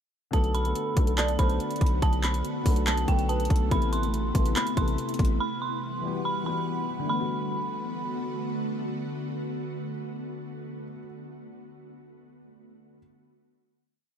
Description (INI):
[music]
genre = hip hop, trap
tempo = 142 BPM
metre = 4/4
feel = half-time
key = B phrygian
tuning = A4 = 440 Hz
[part]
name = dark detuned synth bell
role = melody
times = 0.3-8.3 s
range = G5 to C6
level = -32 LUFS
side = right 4 dB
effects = chorus
[part]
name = hollow clarinet-like synth lead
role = second line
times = 0.3-3.7 s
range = A4 to D5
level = -37 LUFS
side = right 5 dB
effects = chorus, tape echo
[part]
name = dark concert grand piano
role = accompaniment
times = 0.3-13.0 s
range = C3 to A4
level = -34 LUFS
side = left 6 dB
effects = none
[part]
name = ethereal airy pad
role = sustained chords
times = 0.9-10.9 s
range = C3 to F#5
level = -34 LUFS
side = equal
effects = ensemble chorus, built-in reverb
[part]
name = hard-hitting 808-style bass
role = bass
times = 0.3-5.4 s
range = A1 to B1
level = -27 LUFS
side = equal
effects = none
[part]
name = trap drum kit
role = drums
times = 0.3-5.3 s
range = handclaps, hi-hat, kick drum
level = -26 LUFS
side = equal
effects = overdrive
[sound]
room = little or no reverb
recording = none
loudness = -25 LUFS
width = side -8 dB against mid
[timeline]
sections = 0.3-7.1 hook; 7.1-10.5 final chord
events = none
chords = 0.3 Bm7; 3.7 Amadd9; 5.4 Emadd9; 7.1 Bm7